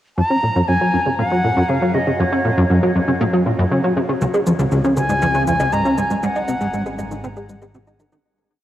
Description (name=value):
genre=ambient, sequencer-driven space music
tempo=119 BPM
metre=4/4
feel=straight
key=Gb major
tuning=A4 = 436 Hz
part: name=mellow silver concert flute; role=melody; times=0.2-7.2 s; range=Db5 to Bb5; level=-21 LUFS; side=left 1 dB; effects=ping-pong delay
part: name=plucky analog bass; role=riff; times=0.2-8.2 s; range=Db2 to Eb4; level=-17 LUFS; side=equal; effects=wide subtle chorus, ping-pong delay
part: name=analog drone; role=bass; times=0.2-8.2 s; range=Ab1 to Gb2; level=-30 LUFS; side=equal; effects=chorus, tube saturation
part: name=cabasa and woodblock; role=percussion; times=4.2-8.2 s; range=none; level=-36 LUFS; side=equal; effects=overdrive, ping-pong delay
room=wet huge ambient reverb, RT60 7.9 s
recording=worn, warbling old tape, cassette tape, warbly pitch drift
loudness=-15 LUFS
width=side -12 dB against mid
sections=0.2-8.2 A section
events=fade-in on synth drone 0.2-8.2; fade-out 5.6-8.2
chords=0.2 Gb; 4.2 Db; 6.2 Ab7